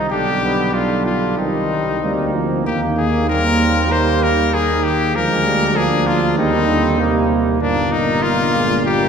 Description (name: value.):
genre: classical, brass quintet.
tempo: 96 BPM.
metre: 4/4.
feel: rubato.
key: unclear.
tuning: A4 = 440 Hz.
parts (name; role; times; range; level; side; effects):
bright trumpet; melody; 0.0-9.1 s; D4 to C5; -19 LUFS; left 4 dB; none.
clear flugelhorn; second line; 0.0-9.1 s; Bb3 to Eb4; -23 LUFS; right 5 dB; none.
mellow French horn; accompaniment; 0.0-9.1 s; Eb3 to C4; -24 LUFS; left 2 dB; none.
warm trombone; accompaniment; 0.0-9.1 s; Bb2 to G3; -23 LUFS; right 2 dB; none.
dark tuba; bass; 0.0-9.1 s; G1 to Eb2; -20 LUFS; right 2 dB; none.
room: wet cathedral reverb, RT60 4.1 s.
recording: recorded in a church or concert hall.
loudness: -14 LUFS.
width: side -6 dB against mid.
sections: 0.0-9.1 A section.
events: none.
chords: 0.1 G/B; 1.4 Cm; 2.7 Eb; 5.1 Bb7/D; 6.4 Eb; 7.6 Gm.